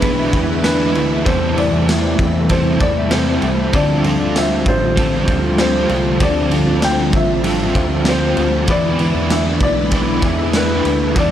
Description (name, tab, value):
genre	dream pop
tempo	97 BPM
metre	4/4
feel	straight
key	unclear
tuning	A4 = 440 Hz
part	felt-muted upright piano	melody	0.0-11.3 s	B4 to G5	-22 LUFS	equal	analog delay
part	overdriven semi-hollow guitar	accompaniment	0.0-11.3 s	D3 to B4	-22 LUFS	right 3 dB	tremolo, analog chorus
part	string machine, violins	sustained chords	0.0-11.3 s	C3 to E5	-21 LUFS	equal	ensemble chorus
part	electric guitar at the edge of break-up	arpeggios	0.0-11.3 s	D3 to B4	-21 LUFS	left 3 dB	ensemble chorus, analog delay
part	fat analog bass	bass	0.0-11.3 s	A1 to E2	-21 LUFS	equal	none
part	raw garage drum kit	drums	0.0-11.3 s	kick drum, ride cymbal, snare drum, tambourine	-20 LUFS	equal	none
room	light reverb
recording	cassette tape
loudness	-13 LUFS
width	side -10 dB against mid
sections	0.0-11.3 A section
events	none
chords	0.0 E7; 1.3 Am7/E; 3.7 Dm11; 8.7 E7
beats	0.02 0.64 | 1.26 1.88 2.50 3.12 | 3.73 4.35 4.97 5.59 | 6.21 6.83 7.45 8.06 | 8.68 9.30 9.92 10.54 | 11.16